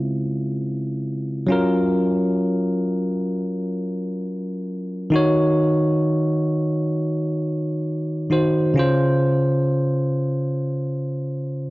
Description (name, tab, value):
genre	R&B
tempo	free time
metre	none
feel	none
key	Db major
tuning	A4 = 440 Hz
part	bell-like tine electric piano	solo	0.0-11.7 s	Db3 to Db5	-19 LUFS	equal	none
room	light reverb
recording	worn, warbling old tape, cassette tape, warbly pitch drift, nothing above 7.5 kHz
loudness	-19 LUFS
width	side -19 dB against mid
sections	0.0-11.7 A section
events	none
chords	0.0 Dbmaj7; 1.5 Gbmaj7; 5.1 Ebm7; 8.8 Dbmaj7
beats	free time